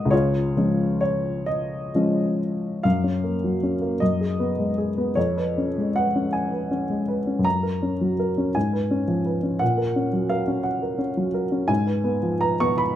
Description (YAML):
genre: classical, romantic character piece for solo piano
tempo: 42-58 BPM (dotted quarters)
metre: 6/8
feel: rubato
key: F# major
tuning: A4 = 440 Hz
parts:
  - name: warm baby grand piano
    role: solo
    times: 0.0-13.0 s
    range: C#2 to C#6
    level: -21 LUFS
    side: equal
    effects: none
room: moderate recital hall reverb, RT60 1.3 s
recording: close, detailed microphones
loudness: -21 LUFS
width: side -11 dB against mid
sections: 0.0-2.8 A section; 2.8-13.0 B section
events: none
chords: 0.1 C#; 2.8 F#; 4.0 G#m7/F#; 5.2 C#7/E#; 7.4 F#; 8.6 C#7/G#; 9.6 F#/A#; 11.7 Fdim/Ab